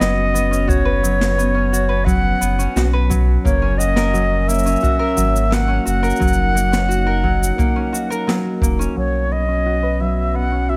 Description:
folktronica; 87 BPM; 4/4; straight; A4 = 440 Hz
bright reedy concert flute; melody; 0.0-10.8 s; C#5 to F#5; -24 LUFS; equal; vintage 12-bit sampler grit, digital delay
warm analog pad; sustained chords; 0.0-10.8 s; F#3 to D#4; -28 LUFS; equal; chorus
concert harp; arpeggios; 0.0-10.8 s; F#3 to B4; -25 LUFS; equal; low-pass filter
warm sub bass; bass; 0.0-10.8 s; E1 to B1; -22 LUFS; equal
snare drum and cabasa; drums; 0.0-10.8 s; -27 LUFS; equal; low-pass filter on snare, low-pass filter on perc, low-pass filter on room
kick drum; drums; 0.7-8.8 s; -22 LUFS; equal
light reverb, small room reverb; -18 LUFS; mono
0.0-9.0 A section; 9.0-10.8 B section
filter sweep on harp 9.0-10.8
0.0 Bsus2; 3.5 F#; 9.0 Bsus2
0.01 | 0.70 1.39 2.08 2.76 | 3.45 4.14 4.83 5.52 | 6.21 6.90 7.59 8.28 | 8.97 9.66 10.35

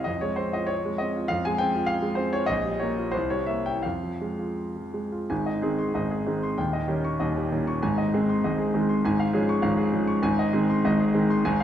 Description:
classical, romantic character piece for solo piano; 80-103 BPM; 2/4; rubato; F minor, Ab major from 5.3 s; A4 = 440 Hz
warm concert grand piano; solo; 0.0-11.6 s; Eb1 to Db6; -23 LUFS; equal
wet scoring stage reverb, RT60 1.7 s; -23 LUFS; side -10 dB against mid
0.0-5.3 A section; 5.3-11.6 B section
0.1 Fm; 2.5 Gm7b5/Bb; 3.1 C7; 3.8 Fm; 5.3 Ab; 6.6 Eb7; 7.8 Ab; 9.1 Db/Ab; 10.2 Ab
| 0.08 0.71 | 1.32 1.90 | 2.50 3.15 | 3.84 4.59 | 5.30 5.94 | 6.58 7.21 | 7.82 8.44 | 9.05 9.64 | 10.23 10.85 | 11.45

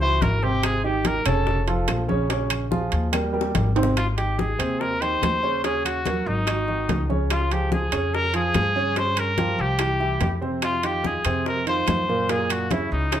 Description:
Afro-Cuban jazz; 144 BPM; 4/4; straight; Ab major; A4 = 439 Hz
clear trumpet; melody; 0.0-13.2 s; Eb4 to C5; -25 LUFS; left 1 dB; slapback echo
warm baby grand piano; accompaniment; 0.0-13.2 s; Bb2 to Db5; -27 LUFS; right 4 dB
upright bass; bass; 0.0-13.2 s; F1 to G2; -26 LUFS; left 1 dB
bongos; percussion; 0.0-13.2 s; -33 LUFS; left 8 dB
congas; percussion; 0.0-13.2 s; -30 LUFS; left 2 dB
timbales; percussion; 0.2-13.2 s; -30 LUFS; right 7 dB
claves; percussion; 0.6-13.2 s; -35 LUFS; left 7 dB
moderate club reverb, RT60 0.7 s; -20 LUFS; side -10 dB against mid
0.0-4.0 A section; 4.0-13.2 B section
trumpet solo 0.0-4.0; drum fill 3.1-4.0
0.0 Gbsus2; 0.6 Abmaj7; 1.5 Faug; 2.3 Bbm7; 3.1 Eb6; 4.0 Abmaj7; 5.6 Ebm7; 6.5 Ab5; 7.3 Db; 9.0 Gm7b5; 9.8 C; 10.6 Fm7; 12.3 Gb9
0.22 | 0.64 1.06 1.47 1.89 | 2.31 2.72 3.14 3.56 | 3.97 4.39 4.80 5.22 | 5.64 6.05 6.47 6.88 | 7.30 7.72 8.13 8.55 | 8.96 9.38 9.79 10.21 | 10.63 11.04 11.46 11.87 | 12.29 12.70 13.12

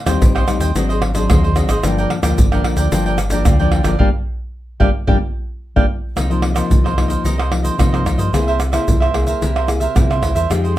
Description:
samba and choro; 111 BPM; 4/4; straight; G minor, C minor from 6.2 s; A4 = 440 Hz
nylon-string guitar; accompaniment; 0.0-10.8 s; G2 to Ab4; -21 LUFS; left 4 dB
cavaquinho; accompaniment; 0.1-10.8 s; Eb4 to G5; -22 LUFS; right 4 dB
sub bass with octave; bass; 0.1-10.8 s; G1 to C3; -19 LUFS; equal
egg shaker, surdo, pandeiro and tamborim; percussion; 0.1-10.8 s; -17 LUFS; right 1 dB
light reverb; -14 LUFS; side -14 dB against mid
0.0-6.2 A section; 6.2-10.8 B section
band accent 4.0-6.2
0.0 Am7b5; 0.8 Ab7#11; 1.8 Gm7; 6.2 Cm7; 8.3 C7b13
0.21 0.76 1.30 | 1.84 2.38 2.92 3.46 | 4.00 4.54 5.08 5.62 | 6.17 6.71 7.25 7.79 | 8.33 8.88 9.42 9.96 | 10.50

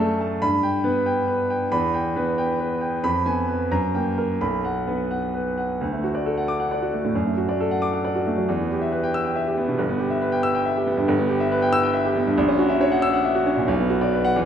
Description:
classical, virtuoso piano study; 91 BPM (dotted quarters); 6/8; rubato; D major from 5.8 s, B minor from 11.1 s; A4 = 442 Hz
clear grand piano; solo; 0.0-14.5 s; G1 to E6; -20 LUFS; equal
wet recital hall reverb, RT60 1.6 s; -20 LUFS; side -8 dB against mid
0.0-5.8 A section; 5.8-14.5 B section
0.4 G; 1.7 Em; 3.0 Fdim; 3.7 F#; 4.4 B5; 5.8 D; 7.2 D/F#; 8.5 Em; 9.8 Em/G; 12.4 F#7/A#; 13.7 Bm
| 0.41 1.06 | 1.72 2.38 | 3.04 3.71 | 4.41 5.11 | 5.81 6.49 | 7.15 7.82 | 8.48 9.14 | 9.78 10.43 | 11.08 11.73 | 12.38 13.03 | 13.68 14.36

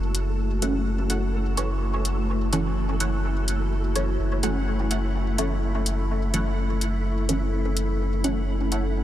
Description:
dub techno; 126 BPM; 4/4; straight; F# minor; A4 = 440 Hz
warbly tape-like pad; sustained chords; 0.0-9.0 s; A3 to A4; -30 LUFS; left 1 dB; chorus, built-in reverb
pure sine sub bass; bass; 0.0-9.0 s; F#1; -26 LUFS; equal
flickering grainy texture; texture; 0.0-9.0 s; A3 to A4; -38 LUFS; right 1 dB; built-in reverb, ensemble chorus
electronic hi-hat; drums; 0.1-8.8 s; -30 LUFS; left 2 dB; overdrive
filtered dub chord stab; riff; 0.6-8.8 s; E4 to F#5; -37 LUFS; right 2 dB; phaser, lush chorus, dub echo
filtered dub chord stab; stabs; 0.6-8.4 s; E3 to C#4; -30 LUFS; right 1 dB; phaser, dub echo
moderate huge ambient reverb, RT60 7.4 s; dreamy mix soaked in reverb; -22 LUFS; side -12 dB against mid
0.0-9.0 A section
filter sweep on synth stab 0.0-9.0
0.0 F#m7
| 0.39 0.86 1.34 1.81 | 2.29 2.77 3.24 3.72 | 4.19 4.67 5.15 5.62 | 6.10 6.58 7.05 7.53 | 8.00 8.48 8.96

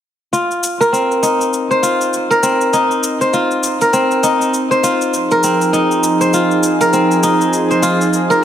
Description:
organic downtempo; 100 BPM; 4/4; swing 59% on 16ths; F minor; A4 = 441 Hz
kora; arpeggios; 0.3-8.4 s; C4 to C5; -13 LUFS; equal; low-pass filter, tape echo
cabasa; drums; 0.3-8.4 s; -23 LUFS; left 1 dB; studio ambience
warm analog pad; sustained chords; 5.1-8.4 s; F3 to Ab4; -16 LUFS; right 2 dB; chorus, vintage 12-bit sampler grit
moderate lush hall reverb, RT60 2.0 s; -12 LUFS; side -10 dB against mid
0.3-8.4 A section
0.3 Fm7
| 0.33 0.93 1.53 2.13 | 2.73 3.33 3.93 4.53 | 5.13 5.73 6.33 6.93 | 7.53 8.13

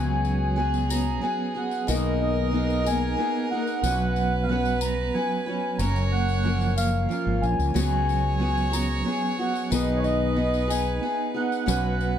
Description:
acoustic folk duo or small band; 92 BPM; 3/4; straight; A4 = 440 Hz
mellow accordion; melody; 0.0-12.2 s; C#5 to A#5; -29 LUFS; right 1 dB
clear fiddle; second line; 0.0-12.2 s; G#4 to C#5; -33 LUFS; right 3 dB
picked steel-string acoustic guitar; accompaniment; 0.0-12.2 s; B2 to B4; -29 LUFS; left 5 dB
clean electric guitar; arpeggios; 0.0-12.2 s; E#3 to A#4; -30 LUFS; right 5 dB; tremolo
mellow fretless electric bass; bass; 0.0-12.2 s; F#1 to C#2; -26 LUFS; equal; wide subtle chorus
tambourine; percussion; 0.2-12.1 s; -37 LUFS; left 8 dB
light reverb; dark, warm production; -22 LUFS; side -9 dB against mid
0.0-12.2 A section
0.0 C#7sus4; 1.9 G#madd9/B; 3.8 Bsus2; 5.8 F#maj7; 7.8 C#7sus4; 9.7 G#m/B; 11.7 Bsus2
0.57 1.23 | 1.88 2.53 3.18 | 3.84 4.49 5.14 | 5.79 6.45 7.10 | 7.75 8.41 9.06 | 9.71 10.37 11.02 | 11.68

